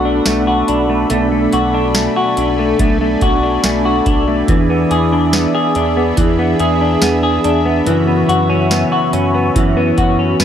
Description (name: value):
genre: dream pop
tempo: 71 BPM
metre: 4/4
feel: straight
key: B dorian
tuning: A4 = 440 Hz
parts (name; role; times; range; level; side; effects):
- mellow electric guitar; accompaniment; 0.0-10.4 s; F#2 to A4; -20 LUFS; right 5 dB; harmonic tremolo, ensemble chorus
- phased analog pad; sustained chords; 0.0-10.4 s; F#4 to B5; -21 LUFS; right 1 dB; phaser, chorus
- semi-hollow electric guitar; arpeggios; 0.0-10.4 s; E3 to G#4; -14 LUFS; left 2 dB; wide subtle chorus, tape echo
- round analog bass; bass; 0.0-10.4 s; B1 to F#2; -21 LUFS; equal; transformer saturation
- booming analog drum machine; drums; 0.3-10.4 s; hi-hat, kick drum, snare drum, tambourine; -17 LUFS; equal; none
room: little or no reverb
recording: dry, gritty hardware recording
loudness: -12 LUFS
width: side -9 dB against mid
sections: 0.0-10.4 A section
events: none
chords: 0.0 Bm7; 4.5 E7; 7.9 F#7sus4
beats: 0.26 | 1.10 1.95 2.79 3.64 | 4.48 5.33 6.17 7.02 | 7.87 8.71 9.55 10.40